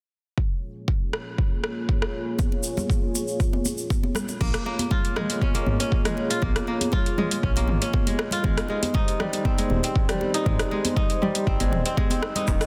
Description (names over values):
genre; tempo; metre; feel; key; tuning
afro house; 119 BPM; 4/4; straight; unclear; A4 = 440 Hz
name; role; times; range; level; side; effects
dark analog pad; sustained chords; 0.4-12.7 s; G3 to Db5; -34 LUFS; equal; chorus, sidechain pumping
electronic kick drum; drums; 0.4-12.6 s; none; -26 LUFS; equal; none
deep house drum kit; drums; 1.1-12.7 s; crash cymbal, hi-hat, rim click, toms; -32 LUFS; equal; overdrive
congas; percussion; 2.4-12.6 s; none; -33 LUFS; equal; none
tube shaker; percussion; 2.4-4.4, 12.5-12.7 s; none; -35 LUFS; equal; none
kora; arpeggios; 4.4-12.7 s; Eb3 to F4; -30 LUFS; equal; sidechain pumping, digital delay
dark detuned saw bass; bass; 4.4-12.6 s; Eb1 to Bb1; -29 LUFS; equal; sidechain pumping
darbuka; percussion; 12.5-12.6 s; none; -38 LUFS; equal; none
room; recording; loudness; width
light reverb, studio ambience; dense, heavily limited modern master; -24 LUFS; mono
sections
0.4-4.4 A section; 4.4-12.7 B section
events
none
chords
0.4 Bbm7; 8.4 Abmaj7